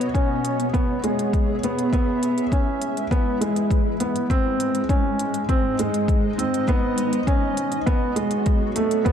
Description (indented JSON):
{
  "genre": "piano and strings electronica",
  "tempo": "101 BPM",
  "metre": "4/4",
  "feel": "straight",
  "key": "unclear",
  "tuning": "A4 = 440 Hz",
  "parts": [
    { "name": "granular cloud pad", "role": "sustained chords", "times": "0.0-9.1 s", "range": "G#3 to E5", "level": "-27 LUFS", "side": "left 1 dB", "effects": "built-in reverb, sidechain pumping" },
    { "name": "felt-muted upright piano", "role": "riff", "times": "0.0-9.1 s", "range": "G#3 to C#4", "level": "-22 LUFS", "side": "right 1 dB", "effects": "ping-pong delay" },
    { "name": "electronic hi-hat", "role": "drums", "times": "0.0-9.1 s", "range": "none", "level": "-34 LUFS", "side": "equal", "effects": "none" },
    { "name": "electronic kick drum", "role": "drums", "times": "0.1-9.1 s", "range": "none", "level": "-21 LUFS", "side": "left 1 dB", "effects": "overdrive" },
    { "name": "riser", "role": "sound effects", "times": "9.1 s", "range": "none", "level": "barely audible", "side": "none", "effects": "none" }
  ],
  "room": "light reverb, digital ambience",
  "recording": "dark, warm production",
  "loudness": "-20 LUFS",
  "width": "side -8 dB against mid",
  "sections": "0.0-9.1 A section",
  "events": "build-up 0.0-9.1",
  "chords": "0.0 C#m7; 1.9 E; 4.3 G#; 6.7 Badd9",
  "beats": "0.15 0.74 1.33 | 1.93 2.52 3.12 3.71 | 4.30 4.90 5.49 6.09 | 6.68 7.28 7.87 8.46 | 9.06"
}